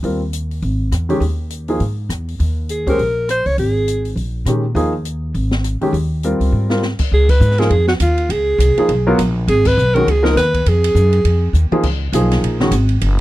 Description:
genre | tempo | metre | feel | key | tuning
modal jazz | 203 BPM | 4/4 | swing 59% on 8ths | Db mixolydian from 7.1 s | A4 = 440 Hz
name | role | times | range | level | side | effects
warm baby grand piano | accompaniment | 0.0-12.7 s | Eb3 to C5 | -18 LUFS | equal | none
upright bass | bass | 0.0-13.2 s | Gb1 to Bb2 | -16 LUFS | equal | none
open jazz drum kit | drums | 0.0-13.1 s | crash cymbal, hi-hat, kick drum, ride cymbal, rim click, snare drum, toms | -24 LUFS | left 1 dB | none
breathy alto saxophone | melody | 2.7-4.1, 7.1-11.6 s | F4 to Db5 | -16 LUFS | right 1 dB | none
room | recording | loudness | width
little or no reverb | dry, close 1970s-style studio recording | -14 LUFS | side -16 dB against mid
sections
0.0-7.1 A section; 7.1-13.2 B section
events
drum fill 6.5, 11.5; band accent 7.3, 9.6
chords
0.0 Dbsus2 (rootless); 2.4 Eb7sus4; 4.8 Dbadd9 (rootless); 7.1 Db9; 11.8 Cbsus2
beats
| 0.03 0.33 0.62 0.92 | 1.22 1.51 1.81 2.10 | 2.40 2.69 2.99 3.28 | 3.58 3.87 4.17 4.46 | 4.76 5.05 5.35 5.65 | 5.94 6.24 6.53 6.83 | 7.12 7.42 7.71 8.01 | 8.30 8.60 8.89 9.19 | 9.48 9.78 10.07 10.36 | 10.66 10.95 11.25 11.54 | 11.84 12.13 12.42 12.72 | 13.01

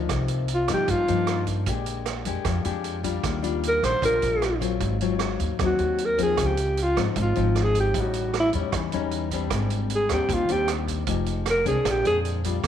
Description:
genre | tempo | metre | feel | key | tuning
bossa nova | 153 BPM | 4/4 | straight | C minor | A4 = 440 Hz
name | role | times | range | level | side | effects
nylon-string guitar | accompaniment | 0.0-12.7 s | G2 to G4 | -28 LUFS | left 10 dB | none
upright bass | bass | 0.0-12.7 s | F1 to G2 | -28 LUFS | right 1 dB | none
vintage drum kit | drums | 0.1-12.7 s | hi-hat, kick drum, rim click | -31 LUFS | right 6 dB | none
mellow alto saxophone | melody | 0.5-12.2 s | E4 to C5 | -23 LUFS | right 1 dB | none
room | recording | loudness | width
light reverb | 1960s-style stereo with parts hard left and right | -22 LUFS | side -9 dB against mid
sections
0.1-12.7 A section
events
alto saxophone solo 0.1-12.7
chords
0.1 Cm7; 1.7 Bb6; 3.2 Ebmaj9; 4.8 Ab6; 6.4 Dbmaj9; 7.9 A7#11; 9.5 Abmaj7#11; 11.1 Fm9; 11.9 Bb9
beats
| 0.10 0.49 0.89 1.28 | 1.67 2.06 2.46 2.85 | 3.24 3.63 4.03 4.42 | 4.81 5.20 5.60 5.99 | 6.38 6.77 7.16 7.55 | 7.95 8.34 8.73 9.12 | 9.51 9.90 10.29 10.69 | 11.08 11.47 11.86 12.25 | 12.64

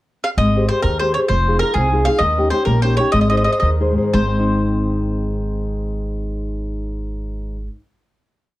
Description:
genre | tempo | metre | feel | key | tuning
italian folk, Italian serenade | 113-133 BPM (dotted quarters) | 6/8 | straight | Ab major | A4 = 440 Hz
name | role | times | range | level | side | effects
mandolin | melody | 0.2-7.7 s | Ab4 to F5 | -20 LUFS | equal | plate reverb
nylon-string guitar | accompaniment | 0.4-7.8 s | Ab2 to C5 | -20 LUFS | left 1 dB | none
upright bass | bass | 0.4-7.7 s | F1 to Eb2 | -20 LUFS | equal | none
room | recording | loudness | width
moderate studio ambience, RT60 0.5 s | dark, warm production | -16 LUFS | side -16 dB against mid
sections
0.0-0.4 pickup bar; 0.4-4.1 A section; 4.1-6.2 final chord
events
slowing down 2.2-4.1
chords
0.4 Abmaj7; 1.3 Fm7; 2.2 Eb7; 3.1 Ab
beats
| 0.39 0.85 | 1.31 1.76 | 2.22 2.67 | 3.14 3.63 | 4.15 4.67 | 5.18 5.69

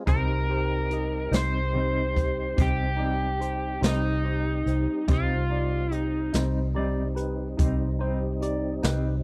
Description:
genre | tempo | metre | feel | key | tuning
slow blues | 48 BPM (dotted quarters) | 12/8 | straight | C minor | A4 = 440 Hz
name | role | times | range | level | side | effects
barky tine electric piano | accompaniment | 0.0-9.2 s | Eb4 to Eb5 | -37 LUFS | equal | phaser
tonewheel organ | sustained chords | 0.0-9.2 s | G3 to G4 | -39 LUFS | equal | slow rotary speaker, overdrive, chorus vibrato
overdriven slide guitar | melody | 0.1-6.3 s | Eb4 to C5 | -32 LUFS | equal | none
mellow electric guitar | accompaniment | 0.1-9.1 s | C3 to Eb4 | -35 LUFS | equal | tremolo
vintage muted fingered electric bass | bass | 0.1-9.2 s | C2 | -30 LUFS | equal | none
jazz brush drum kit | drums | 0.1-9.0 s | hi-hat, kick drum, snare drum | -28 LUFS | equal | none
room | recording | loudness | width
studio reverb | dry, close 1970s-style studio recording | -26 LUFS | mono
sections
0.0-9.2 A section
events
tine electric piano fill 8.8-9.2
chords
0.1 Cm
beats
| 0.07 1.33 2.58 3.83 | 5.09 6.34 7.59 8.83

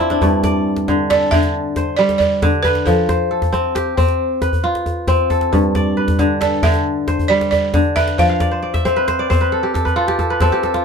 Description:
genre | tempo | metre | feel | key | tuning
west african traditional, West African string and xylophone music | 90 BPM (dotted quarters) | 12/8 | straight | G mixolydian | A4 = 440 Hz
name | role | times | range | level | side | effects
balafon | melody | 0.0-8.7 s | A4 to A5 | -18 LUFS | right 3 dB | none
kora | arpeggios | 0.0-10.8 s | G2 to F5 | -16 LUFS | left 1 dB | none
djembe | percussion | 0.1-10.8 s | none | -20 LUFS | equal | none
room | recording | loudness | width
light reverb | close, detailed microphones | -14 LUFS | side -6 dB against mid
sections
0.2-10.8 A section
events
kora fill 0.0, 8.3-10.8; drum fill 0.0, 10.5-10.8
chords
0.2 G5; 2.9 F; 5.5 G; 8.2 F5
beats
| 0.21 0.88 1.54 2.20 | 2.87 3.53 4.20 4.86 | 5.53 6.19 6.86 7.52 | 8.19 8.85 9.52 10.19

